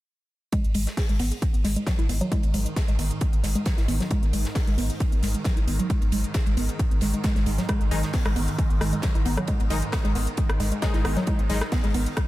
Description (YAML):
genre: driving peak-time techno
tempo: 134 BPM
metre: 4/4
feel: straight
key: G# minor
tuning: A4 = 439 Hz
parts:
  - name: woody wave-folded pluck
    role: riff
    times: 0.5-12.0 s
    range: F#3 to G#4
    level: -30 LUFS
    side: equal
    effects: chorus, sidechain pumping, analog delay
  - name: swarming drone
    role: drone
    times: 1.4-12.3 s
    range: G#2 to D#3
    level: -33 LUFS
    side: right 2 dB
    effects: built-in reverb, phaser, sidechain pumping
  - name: electronic kick drum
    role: drums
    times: 0.5-12.3 s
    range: none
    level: -24 LUFS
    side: equal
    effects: overdrive
  - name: gated 80s drum kit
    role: drums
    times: 0.5-12.3 s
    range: hi-hat, ride cymbal, snare drum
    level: -38 LUFS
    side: right 1 dB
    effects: high-pass filter on cymbals, high-pass filter on hats, high-pass filter on snare, high-pass filter on room, dub echo
  - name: techno drum kit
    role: drums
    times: 0.5-12.3 s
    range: hi-hat, rim click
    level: -34 LUFS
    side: left 1 dB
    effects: overdrive, sidechain pumping on hats, dub echo
  - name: saturated sub bass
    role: bass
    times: 0.6-12.1 s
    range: G#1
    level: -26 LUFS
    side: equal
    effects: sidechain pumping, low-pass filter
  - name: supersaw stab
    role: stabs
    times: 7.9-11.6 s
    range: D#3 to D#4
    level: -33 LUFS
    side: left 3 dB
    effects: sidechain pumping, analog delay
room: light reverb, studio reverb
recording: echo-heavy mix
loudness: -22 LUFS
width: side -16 dB against mid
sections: 0.5-12.3 A section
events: filter sweep on synth arpeggio sound 0.5-12.3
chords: 0.5 G#5